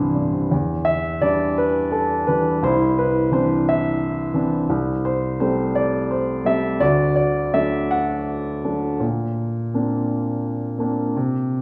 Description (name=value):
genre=classical, lyrical solo piano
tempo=57 BPM (dotted quarters)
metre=6/8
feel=rubato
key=unclear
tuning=A4 = 435 Hz
part: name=dark baby grand piano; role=solo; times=0.0-11.6 s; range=C2 to F#5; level=-21 LUFS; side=equal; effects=none
room=wet recital hall reverb, RT60 1.5 s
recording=recorded in a church or concert hall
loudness=-21 LUFS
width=mono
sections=0.5-11.6 A section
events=none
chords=0.0 Cadd9; 0.5 Em7; 2.6 Cadd9; 4.7 Am7/C; 6.8 D; 9.0 Bbadd9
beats=| 0.52 1.58 | 2.62 3.66 | 4.70 5.74 | 6.81 7.91 | 9.02 10.10 | 11.15